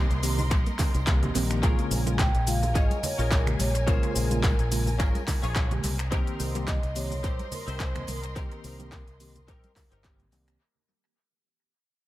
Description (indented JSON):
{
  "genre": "nu-disco, nu disco",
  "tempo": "107 BPM",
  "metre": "4/4",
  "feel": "swing 55% on 16ths",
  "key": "unclear",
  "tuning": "A4 = 439 Hz",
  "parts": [
    { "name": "mellow tine electric piano", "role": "accompaniment", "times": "0.0-10.6 s", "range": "Db3 to Bb4", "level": "-34 LUFS", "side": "equal", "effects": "medium stereo tremolo, vintage 12-bit sampler grit, sidechain pumping, tape echo" },
    { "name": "muted symphonic violin section", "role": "sustained chords", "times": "0.0-10.6 s", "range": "Bb4 to C6", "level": "-40 LUFS", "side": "left 1 dB", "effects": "sidechain pumping" },
    { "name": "fingered electric bass with an envelope filter", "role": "bass", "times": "0.0-10.6 s", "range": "G1 to C2", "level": "-29 LUFS", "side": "equal", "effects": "none" },
    { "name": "soft round pluck", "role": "arpeggios", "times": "0.1-1.5 s", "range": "G3 to Eb4", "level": "-39 LUFS", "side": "right 6 dB", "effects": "none" },
    { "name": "house drum kit", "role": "drums", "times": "0.1-10.6 s", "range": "finger snaps, handclaps, hi-hat, shaker", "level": "-33 LUFS", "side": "equal", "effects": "overdrive, tape echo" },
    { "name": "tambourine and congas", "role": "percussion", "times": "0.1-10.6 s", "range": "none", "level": "-38 LUFS", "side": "right 2 dB", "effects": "none" },
    { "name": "electronic kick drum", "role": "drums", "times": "0.5-10.2 s", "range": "none", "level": "-26 LUFS", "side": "equal", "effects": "overdrive" },
    { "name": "direct-recorded clean electric guitar", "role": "riff", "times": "1.6-10.5 s", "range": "C4 to Db5", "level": "-36 LUFS", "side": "left 3 dB", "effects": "ensemble chorus, tape echo" },
    { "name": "vibraphone with soft mallets", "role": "melody", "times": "2.2-10.0 s", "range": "Bb4 to G5", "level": "-35 LUFS", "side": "equal", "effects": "dub echo" }
  ],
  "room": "light reverb, digital ambience",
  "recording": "echo-heavy mix",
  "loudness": "-24 LUFS",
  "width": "side -16 dB against mid",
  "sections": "0.0-10.6 A section",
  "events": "drop 0.0-10.6; fade-out 4.6-10.6",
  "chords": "0.0 Cm7; 1.6 Bbm7; 6.1 Cm7"
}